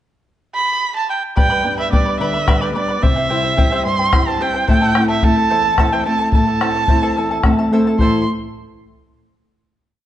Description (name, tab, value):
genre	andean folk, Andean ensemble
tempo	72 BPM (dotted quarters)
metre	6/8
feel	straight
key	A minor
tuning	A4 = 441 Hz
part	warm erhu	melody	0.6-8.2 s	D5 to C6	-18 LUFS	right 3 dB	slapback echo
part	charango	accompaniment	1.4-8.2 s	E4 to B5	-23 LUFS	left 2 dB	none
part	nylon-string guitar	accompaniment	1.4-8.3 s	E2 to A5	-19 LUFS	left 1 dB	none
part	bombo	percussion	1.4-8.2 s	none	-18 LUFS	left 1 dB	none
room	moderate recital hall reverb, RT60 1.5 s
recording	nothing above 10.6 kHz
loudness	-14 LUFS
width	side -12 dB against mid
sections	0.0-1.4 pickup bar; 1.4-8.0 A section; 8.0-9.6 final chord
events	nylon-string guitar fill 7.2-8.0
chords	0.0 N.C.; 1.4 G; 3.0 C; 4.7 Am